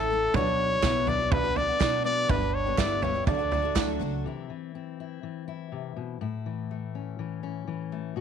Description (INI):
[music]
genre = indie folk with a building arrangement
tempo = 123 BPM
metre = 4/4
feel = straight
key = unclear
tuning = A4 = 439 Hz
[part]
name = warm trumpet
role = melody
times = 0.0-4.0 s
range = A4 to D5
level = -26 LUFS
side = left 2 dB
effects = none
[part]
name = picked twelve-string acoustic guitar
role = accompaniment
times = 0.0-4.3 s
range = G2 to A4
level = -33 LUFS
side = left 14 dB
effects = none
[part]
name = warm upright piano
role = arpeggios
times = 0.0-4.2 s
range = D4 to E4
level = -33 LUFS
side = right 12 dB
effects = slapback echo
[part]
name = upright bass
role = bass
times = 0.0-4.2 s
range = G1 to B2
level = -33 LUFS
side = equal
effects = none
[part]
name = natural country drum kit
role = drums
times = 0.3-3.9 s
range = kick drum, snare drum, toms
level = -29 LUFS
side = right 3 dB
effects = none
[part]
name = group handclap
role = percussion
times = 0.8-3.9 s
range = none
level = -38 LUFS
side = right 16 dB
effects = none
[part]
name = tambourine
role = percussion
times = 0.8-3.9 s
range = none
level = -43 LUFS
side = right 18 dB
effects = none
[part]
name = fingerpicked steel-string acoustic guitar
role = accompaniment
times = 4.2-8.2 s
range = A2 to F#4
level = -34 LUFS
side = left 8 dB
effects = none
[sound]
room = light reverb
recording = 1960s-style stereo with parts hard left and right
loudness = -25 LUFS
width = side -8 dB against mid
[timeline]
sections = 0.0-4.2 A section; 4.2-8.2 B section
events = none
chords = 0.3 Bm; 2.3 G; 3.3 D; 4.2 C; 6.2 A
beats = | 0.35 0.83 1.32 1.81 | 2.29 2.78 3.27 3.76 | 4.25 4.74 5.23 5.72 | 6.21 6.70 7.19 7.68 | 8.17